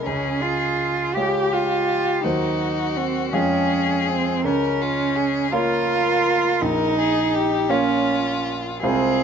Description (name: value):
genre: classical, slow romantic movement for piano trio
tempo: 55 BPM (dotted quarters)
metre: 6/8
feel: rubato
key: unclear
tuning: A4 = 442 Hz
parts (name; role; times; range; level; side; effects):
- rich violin; melody; 0.0-9.2 s; F4 to Bb4; -25 LUFS; left 9 dB; none
- rich cello; second line; 0.0-9.2 s; C4 to G4; -21 LUFS; right 4 dB; none
- clear concert grand piano; accompaniment; 0.0-9.2 s; Bb1 to Db5; -25 LUFS; right 1 dB; none
room: moderate studio reverb, RT60 0.5 s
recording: nothing above 7.9 kHz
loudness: -19 LUFS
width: side -7 dB against mid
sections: 0.0-9.2 A section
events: none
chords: 0.1 Db; 2.2 Cdim/Eb; 3.3 Db/F; 4.4 Bbm/Db; 6.6 Bbm